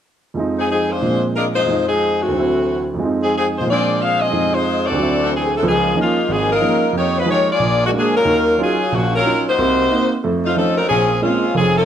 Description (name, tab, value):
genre	jazz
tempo	183 BPM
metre	4/4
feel	swing 62% on 8ths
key	unclear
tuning	A4 = 441 Hz
part	warm grand piano	accompaniment	0.3-11.8 s	F1 to Ab4	-19 LUFS	right 3 dB	none
part	warm saxophone section	melody	0.6-11.8 s	Db3 to F5	-16 LUFS	left 2 dB	plate reverb
room	moderate large studio reverb, RT60 0.9 s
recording	none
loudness	-15 LUFS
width	side -9 dB against mid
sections	0.4-5.6 A section; 5.6-11.8 B section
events	none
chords	0.4 Fm7; 1.0 Bb9; 1.7 Fm7; 2.3 D9; 3.0 Fm7; 3.7 Bb9; 4.3 Fm7; 5.0 D9; 5.6 Db69; 6.9 Fm11; 7.6 Bb7b13; 8.3 Ebm9; 9.6 Cm7b5; 10.2 F7b13; 10.9 Bbm9